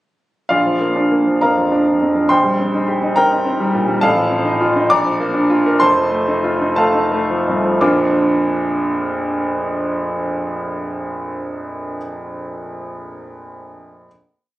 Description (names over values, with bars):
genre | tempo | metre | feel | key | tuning
classical, virtuoso piano study | 55-72 BPM (dotted quarters) | 6/8 | rubato | Bb major | A4 = 440 Hz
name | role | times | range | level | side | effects
clear concert grand piano | solo | 0.5-14.1 s | F1 to D6 | -15 LUFS | equal | none
room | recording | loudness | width
moderate recital hall reverb, RT60 1.8 s | recorded on a phone in the room, club reverb | -14 LUFS | side -16 dB against mid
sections
0.5-7.8 A section; 7.8-11.9 final chord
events
slowing down 3.2-7.8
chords
0.5 Bb; 2.3 Cm7/Bb; 4.0 F7/A; 4.9 Bb; 5.8 F7; 7.8 Bb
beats
| 0.51 1.44 | 2.31 3.16 | 4.00 4.90 | 5.80 6.76 | 7.81 8.83 | 9.85 10.87